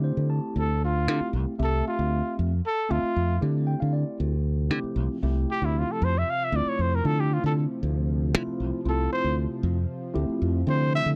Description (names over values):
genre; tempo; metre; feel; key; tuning
jazz; 232 BPM (eighths); 7/8; straight; D minor; A4 = 440 Hz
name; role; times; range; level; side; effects
bright tine electric piano; accompaniment; 0.0-11.2 s; A3 to A5; -33 LUFS; equal; phaser
modern bright fingered electric bass; bass; 0.0-11.2 s; C2 to D3; -27 LUFS; equal; none
warm trumpet; melody; 0.6-11.1 s; E4 to F5; -30 LUFS; equal; slapback echo
lush unison pad; sustained chords; 4.9-11.2 s; C3 to F3; -38 LUFS; equal; chorus
room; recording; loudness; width
little or no reverb; dry, close 1970s-style studio recording; -26 LUFS; mono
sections
0.0-11.2 A section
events
tine electric piano fill 0.0-0.6, 3.4-4.2; trumpet solo 0.0-11.2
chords
0.0 Dm9